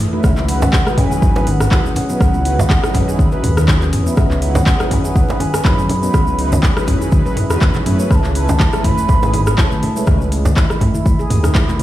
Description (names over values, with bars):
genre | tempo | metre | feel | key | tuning
afro house | 122 BPM | 4/4 | swing 55% on 16ths | C# minor | A4 = 440 Hz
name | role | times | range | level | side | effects
handpan | arpeggios | 0.0-11.8 s | E3 to C#5 | -23 LUFS | equal | sidechain pumping, digital delay
mellow synth brass | stabs | 0.1-10.3 s | F#3 to B4 | -24 LUFS | right 1 dB | chorus, phaser, sidechain pumping, digital delay
mellow bansuri | melody | 0.2-10.1 s | E5 to B5 | -24 LUFS | right 1 dB | digital delay
dark detuned saw bass | bass | 0.2-11.8 s | G#1 to F#2 | -17 LUFS | equal | sidechain pumping
deep house drum kit | drums | 0.2-11.8 s | handclaps, hi-hat, rim click, toms | -21 LUFS | equal | overdrive
electronic kick drum | drums | 0.2-11.7 s | none | -14 LUFS | equal | overdrive
congas | percussion | 0.2-11.8 s | none | -25 LUFS | left 2 dB | none
djembe | percussion | 0.2-11.5 s | none | -23 LUFS | right 2 dB | none
tube shaker | percussion | 0.2-11.8 s | none | -34 LUFS | right 3 dB | none
room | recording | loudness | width
light reverb, studio reverb | played on a big sound system in a bare room, stone room reverb | -12 LUFS | side -14 dB against mid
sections
0.0-11.8 A section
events
none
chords
0.0 C#m11; 8.1 Aadd9